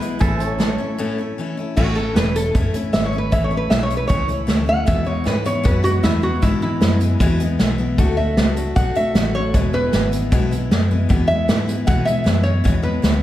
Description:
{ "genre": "honky-tonk and classic country", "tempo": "154 BPM", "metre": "4/4", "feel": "straight", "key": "A major", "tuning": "A4 = 440 Hz", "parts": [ { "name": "twangy electric guitar", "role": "second line", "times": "0.0-1.3 s", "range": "A4 to B4", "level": "-31 LUFS", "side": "right 4 dB", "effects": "tape echo" }, { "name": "picked steel-string acoustic guitar", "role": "accompaniment", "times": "0.0-13.2 s", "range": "E2 to F#4", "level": "-23 LUFS", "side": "left 3 dB", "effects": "none" }, { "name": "pedal steel guitar", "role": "sustained chords", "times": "0.0-1.8 s", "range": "G#4 to E5", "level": "-29 LUFS", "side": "right 1 dB", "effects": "none" }, { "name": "unplugged drum kit", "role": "drums", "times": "0.0-13.1 s", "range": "crash cymbal, hi-hat, kick drum, snare drum", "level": "-20 LUFS", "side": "equal", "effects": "none" }, { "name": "vintage muted fingered electric bass", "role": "bass", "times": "0.2-13.2 s", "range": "E1 to B2", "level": "-22 LUFS", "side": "equal", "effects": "none" }, { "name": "lap resonator guitar", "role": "melody", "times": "1.8-13.2 s", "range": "E4 to F#5", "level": "-22 LUFS", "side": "right 1 dB", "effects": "none" } ], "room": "moderate recital hall reverb, RT60 1.5 s", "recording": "heard from further back in the room", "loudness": "-16 LUFS", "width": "side -13 dB against mid", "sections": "0.0-1.8 A section; 1.8-13.2 B section", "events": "break 1.0-1.8; resonator guitar played with a steel bar solo 1.8-13.2", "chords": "0.2 A; 4.9 E; 8.0 D; 9.5 E" }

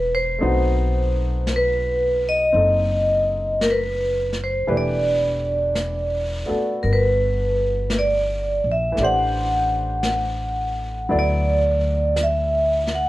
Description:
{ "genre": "jazz ballad", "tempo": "56 BPM", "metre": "4/4", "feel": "swing 68% on 8ths", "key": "unclear", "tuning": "A4 = 439 Hz", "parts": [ { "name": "vibraphone with medium hard mallets", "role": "melody", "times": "0.0-13.1 s", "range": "Bb4 to F#5", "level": "-20 LUFS", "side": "equal", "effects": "none" }, { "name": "clear upright piano", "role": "accompaniment", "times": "0.0-13.1 s", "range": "E3 to E5", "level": "-28 LUFS", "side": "left 1 dB", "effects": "none" }, { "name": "upright bass", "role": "bass", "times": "0.0-13.1 s", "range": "E1 to D2", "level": "-24 LUFS", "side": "equal", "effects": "none" }, { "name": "jazz brush drum kit", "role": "drums", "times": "0.4-13.1 s", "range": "brushed snare drum, hi-hat, snare drum", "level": "-32 LUFS", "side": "left 1 dB", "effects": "none" } ], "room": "light reverb", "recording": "worn, warbling old tape, cassette tape, warbly pitch drift", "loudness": "-18 LUFS", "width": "side -16 dB against mid", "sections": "0.0-13.1 A section", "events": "none", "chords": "0.4 B7b9; 4.7 Em9; 9.0 Am7; 11.1 D" }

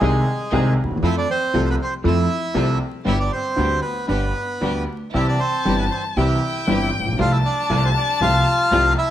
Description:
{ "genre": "tango", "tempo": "118 BPM", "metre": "4/4", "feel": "rubato", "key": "unclear", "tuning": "A4 = 438 Hz", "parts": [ { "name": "bandoneon", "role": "melody", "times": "0.0-9.1 s", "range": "Ab3 to F5", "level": "-22 LUFS", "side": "right 1 dB", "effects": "none" }, { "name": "warm upright piano", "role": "accompaniment", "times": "0.0-8.9 s", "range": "G1 to A4", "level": "-22 LUFS", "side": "left 1 dB", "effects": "none" }, { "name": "rich chamber string section", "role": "stabs", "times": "0.0-8.9 s", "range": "A3 to A4", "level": "-32 LUFS", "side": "equal", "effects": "none" }, { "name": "upright bass", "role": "bass", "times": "0.0-8.9 s", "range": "G1 to F2", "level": "-23 LUFS", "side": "equal", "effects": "none" }, { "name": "warm violin", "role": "second line", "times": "5.1-9.1 s", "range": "G5 to A5", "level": "-24 LUFS", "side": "left 5 dB", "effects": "none" } ], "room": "moderate large studio reverb, RT60 1.4 s", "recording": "close, detailed microphones, vinyl crackle", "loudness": "-17 LUFS", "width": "side -11 dB against mid", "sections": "0.0-9.1 A section", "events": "none", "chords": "0.0 Ab/C; 1.0 F; 3.1 G; 5.1 C; 7.2 F/C" }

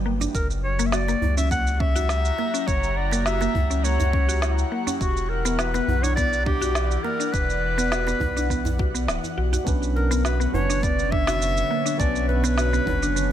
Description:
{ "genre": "organic downtempo", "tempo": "103 BPM", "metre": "4/4", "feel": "straight", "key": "B harmonic minor", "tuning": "A4 = 440 Hz", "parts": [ { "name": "airy breathy pad", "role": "sustained chords", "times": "0.0-13.3 s", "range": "B2 to A#5", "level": "-31 LUFS", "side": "equal", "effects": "chorus, phaser, sidechain pumping" }, { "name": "warm sub bass", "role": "bass", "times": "0.0-13.3 s", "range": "D1 to C#2", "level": "-25 LUFS", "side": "equal", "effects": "sidechain pumping" }, { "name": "mallet-like synth pluck", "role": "arpeggios", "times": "0.1-13.2 s", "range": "A#3 to F#4", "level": "-29 LUFS", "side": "left 1 dB", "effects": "chorus, ping-pong delay" }, { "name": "electronic shaker and snare drum", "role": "drums", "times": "0.2-13.3 s", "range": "none", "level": "-31 LUFS", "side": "right 2 dB", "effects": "studio reverb" }, { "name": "djembe", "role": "percussion", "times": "0.2-13.0 s", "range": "none", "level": "-33 LUFS", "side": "right 3 dB", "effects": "none" }, { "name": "breathy clarinet", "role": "melody", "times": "0.3-13.3 s", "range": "F#4 to F#5", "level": "-26 LUFS", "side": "left 1 dB", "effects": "ping-pong delay" }, { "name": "electronic kick drum", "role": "drums", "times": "0.3-13.0 s", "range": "none", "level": "-26 LUFS", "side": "equal", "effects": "studio reverb" }, { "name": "tine electric piano", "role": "accompaniment", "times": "9.6-13.3 s", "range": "F#3 to B4", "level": "-29 LUFS", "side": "right 4 dB", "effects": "analog chorus, sidechain pumping, ping-pong delay" } ], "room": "digital ambience", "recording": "none", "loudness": "-20 LUFS", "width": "side -10 dB against mid", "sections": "0.0-9.7 A section; 9.7-13.3 B section", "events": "none", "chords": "0.3 F#7b9; 5.0 Em9; 9.7 Bmadd9" }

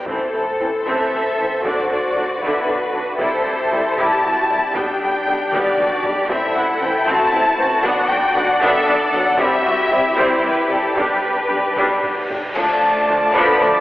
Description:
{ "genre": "cinematic, epic orchestral film score", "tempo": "77 BPM (dotted quarters)", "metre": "6/8", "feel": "straight", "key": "unclear", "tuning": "A4 = 440 Hz", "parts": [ { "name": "clear symphonic violin section", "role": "melody", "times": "0.0-13.8 s", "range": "A4 to B5", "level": "-20 LUFS", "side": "left 2 dB", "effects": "none" }, { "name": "warm symphonic violin section", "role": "second line", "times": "0.0-13.7 s", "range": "A3 to D5", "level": "-23 LUFS", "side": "left 1 dB", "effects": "none" }, { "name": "clear symphonic viola section", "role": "accompaniment", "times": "0.0-13.7 s", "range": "D3 to E4", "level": "-22 LUFS", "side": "equal", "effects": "none" }, { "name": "reverse cymbal, sub drop, cymbal swell and impact", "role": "sound effects", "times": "0.0-1.6, 12.0-13.8 s", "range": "none", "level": "-37 LUFS", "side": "equal", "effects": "none" }, { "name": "mellow tuba", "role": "bass", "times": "0.1-13.7 s", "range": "A1 to D2", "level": "-33 LUFS", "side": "right 1 dB", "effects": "none" }, { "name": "rich studio double bass section", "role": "bass", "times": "0.1-13.7 s", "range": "A1 to D2", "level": "-40 LUFS", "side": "right 1 dB", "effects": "none" }, { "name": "taiko ensemble", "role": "drums", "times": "0.1-13.8 s", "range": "none", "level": "-35 LUFS", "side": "equal", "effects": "none" }, { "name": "dark French horn section", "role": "sustained chords", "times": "0.6-13.8 s", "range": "E3 to F4", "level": "-29 LUFS", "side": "equal", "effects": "none" }, { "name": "rich symphonic cello section", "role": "bass", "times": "0.9-13.8 s", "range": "A3 to A4", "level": "-23 LUFS", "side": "right 1 dB", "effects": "none" }, { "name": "timpani", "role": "percussion", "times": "1.6-2.4 s", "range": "B2", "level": "-40 LUFS", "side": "equal", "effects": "none" }, { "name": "cymbal swell, clash cymbals and concert bass drum", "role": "percussion", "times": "9.4-13.6 s", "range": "none", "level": "-30 LUFS", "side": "equal", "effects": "none" }, { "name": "bright trombone section", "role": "sustained chords", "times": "12.6-13.8 s", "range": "D3 to F3", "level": "-25 LUFS", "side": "equal", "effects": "none" }, { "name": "clear trumpet section", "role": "stabs", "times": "12.6-13.8 s", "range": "D5", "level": "-20 LUFS", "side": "equal", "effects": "none" } ], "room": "wet concert hall reverb, RT60 2.0 s", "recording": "heard from further back in the room, telephone sound", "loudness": "-15 LUFS", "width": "side -16 dB against mid", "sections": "0.1-12.6 A section; 12.6-13.8 B section", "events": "impact 0.1-1.6, 12.6-13.8; drum fill 5.5-6.3, 11.8-12.6; cymbal swell 12.0-12.6; band accent 12.6-13.1", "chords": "0.1 Am; 1.6 Bm; 3.2 C; 4.8 G/B; 6.3 Am; 7.8 Bm; 9.4 C; 11.0 G/B; 12.6 Dm" }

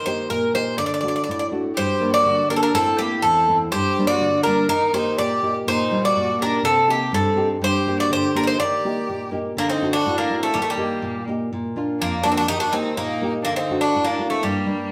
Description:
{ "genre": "greek folk, Greek bouzouki band", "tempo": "123 BPM", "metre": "2/4", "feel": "straight", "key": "D phrygian dominant", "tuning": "A4 = 440 Hz", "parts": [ { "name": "Greek bouzouki", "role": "melody", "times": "0.0-14.9 s", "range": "G3 to D5", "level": "-23 LUFS", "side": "equal", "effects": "none" }, { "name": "nylon-string guitar", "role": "accompaniment", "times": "0.0-14.9 s", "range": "E2 to G4", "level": "-26 LUFS", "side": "equal", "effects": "none" }, { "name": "clear violin", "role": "second line", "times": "1.8-14.9 s", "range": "Bb3 to G4", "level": "-31 LUFS", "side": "equal", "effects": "none" } ], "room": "wet large studio reverb, RT60 0.9 s", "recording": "band playing live in one room", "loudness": "-21 LUFS", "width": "mono", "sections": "0.0-1.8 A section; 1.8-9.6 B section; 9.6-14.9 A section", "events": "none", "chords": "0.0 Eb; 0.8 D; 1.8 Gm; 2.7 Am; 3.7 Gm; 4.7 Eb; 6.6 Cm; 7.6 Gm; 8.6 Eb; 9.6 D; 10.5 Eb; 11.5 Bb; 12.5 Eb; 13.5 D" }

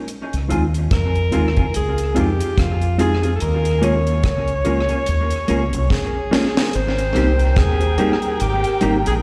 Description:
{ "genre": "lovers rock reggae", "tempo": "72 BPM", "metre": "4/4", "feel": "swing 58% on 16ths", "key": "Ab major", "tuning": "A4 = 440 Hz", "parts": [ { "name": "deep reggae drum kit", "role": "drums", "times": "0.1-9.2 s", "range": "hi-hat, kick drum, rim click, snare drum", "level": "-24 LUFS", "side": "equal", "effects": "tape echo" }, { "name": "deep dub fingered electric bass", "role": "bass", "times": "0.3-9.2 s", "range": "Ab1 to F2", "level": "-22 LUFS", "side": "equal", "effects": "none" }, { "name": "mellow tine electric piano", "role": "accompaniment", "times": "0.5-9.1 s", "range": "G3 to F4", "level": "-25 LUFS", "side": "equal", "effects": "slapback echo" }, { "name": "mellow electric guitar", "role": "stabs", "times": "0.5-9.1 s", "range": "Bb3 to Ab4", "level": "-28 LUFS", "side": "equal", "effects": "tape echo, slapback echo" }, { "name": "breathy alto saxophone", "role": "melody", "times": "0.9-9.1 s", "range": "F4 to Db5", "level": "-25 LUFS", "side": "equal", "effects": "tape echo, slapback echo" }, { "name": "muted studio string section", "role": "second line", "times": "6.7-9.2 s", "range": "Bb4 to G5", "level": "-29 LUFS", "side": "equal", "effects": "slapback echo" } ], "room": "light reverb", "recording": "live gig heard through the venue's PA, recital hall reverb", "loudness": "-18 LUFS", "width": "mono", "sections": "0.0-6.7 A section; 6.7-9.2 B section", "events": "drum fill 5.9-6.7", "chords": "0.1 Dbmaj7; 3.4 Eb7sus4; 6.7 Abmaj9" }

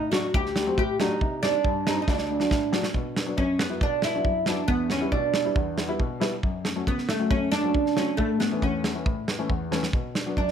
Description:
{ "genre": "klezmer", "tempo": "138 BPM", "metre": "4/4", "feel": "straight", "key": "B minor", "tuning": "A4 = 439 Hz", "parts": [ { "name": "oud", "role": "melody", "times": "0.0-10.5 s", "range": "A3 to G4", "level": "-26 LUFS", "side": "right 2 dB", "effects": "none" }, { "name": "warm upright piano", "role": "accompaniment", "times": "0.0-10.5 s", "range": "D2 to E4", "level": "-30 LUFS", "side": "left 3 dB", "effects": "none" }, { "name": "modern studio drum kit", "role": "drums", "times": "0.1-10.5 s", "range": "kick drum, snare drum", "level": "-28 LUFS", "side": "right 1 dB", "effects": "none" } ], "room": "light reverb", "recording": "none", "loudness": "-23 LUFS", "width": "side -8 dB against mid", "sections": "0.0-2.9 A section; 2.9-10.5 B section", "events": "drum fill 2.1-2.9", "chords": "0.0 D; 1.2 Cm; 2.1 D; 2.9 Bm; 4.7 Em; 6.4 F#m; 8.2 A; 9.9 Bm" }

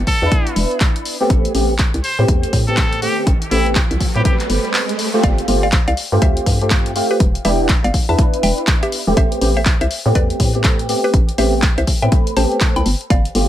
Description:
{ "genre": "deep house", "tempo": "122 BPM", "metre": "4/4", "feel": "swing 61% on 16ths", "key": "A minor", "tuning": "A4 = 444 Hz", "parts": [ { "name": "hollow knocking FM bass", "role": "bass", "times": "0.0-13.5 s", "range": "E1 to A2", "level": "-18 LUFS", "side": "equal", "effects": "sidechain pumping" }, { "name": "trumpet with straight mute", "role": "melody", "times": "0.1-4.3 s", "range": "E4 to C5", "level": "-24 LUFS", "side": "equal", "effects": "dub echo" }, { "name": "electronic kick drum", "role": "drums", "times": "0.1-13.2 s", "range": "none", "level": "-16 LUFS", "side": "equal", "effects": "none" }, { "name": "punchy analog drum machine", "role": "drums", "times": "0.1-13.5 s", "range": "handclaps, hi-hat", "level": "-23 LUFS", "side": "left 1 dB", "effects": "none" }, { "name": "percussive organ stab", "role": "stabs", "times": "0.2-13.5 s", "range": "A3 to B4", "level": "-20 LUFS", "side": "equal", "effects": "ensemble chorus, sidechain pumping, dub echo" }, { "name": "riser", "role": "sound effects", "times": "3.1-5.2 s", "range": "none", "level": "-27 LUFS", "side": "right 3 dB", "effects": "none" }, { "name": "mallet-like synth pluck", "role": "melody", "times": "5.2-13.3 s", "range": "G4 to B5", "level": "-23 LUFS", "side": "left 1 dB", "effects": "chorus, dub echo" } ], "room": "digital ambience", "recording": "none", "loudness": "-14 LUFS", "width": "side -12 dB against mid", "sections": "0.0-5.2 A section; 5.2-13.5 B section", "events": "riser 3.1-5.2; drop 5.2-13.5", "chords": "0.0 Em7; 1.3 Am9; 5.2 G9sus4; 7.2 Em7; 9.2 Am9" }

